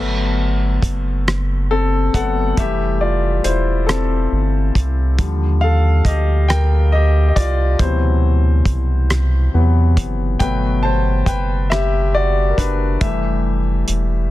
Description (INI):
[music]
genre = slow six-eight R&B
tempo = 46 BPM (dotted quarters)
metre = 6/8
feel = straight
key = G major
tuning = A4 = 441 Hz
[part]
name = clear concert grand piano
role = accompaniment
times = 0.0-14.3 s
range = B2 to A5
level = -20 LUFS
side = left 3 dB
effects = none
[part]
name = round analog bass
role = bass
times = 0.0-14.3 s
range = E1 to E2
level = -16 LUFS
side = equal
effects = none
[part]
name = cloth-damped thuddy drum kit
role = drums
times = 0.8-14.1 s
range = hi-hat, kick drum, rim click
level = -20 LUFS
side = equal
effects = soft clipping on snare
[sound]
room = little or no reverb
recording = dense, heavily limited modern master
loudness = -14 LUFS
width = side -16 dB against mid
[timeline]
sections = 0.0-14.3 A section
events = grand piano solo 0.0-14.3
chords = 0.0 Gmaj9; 2.6 Fmaj9; 5.2 Ebmaj9; 7.8 D13; 10.4 Gmaj9; 13.0 Fmaj9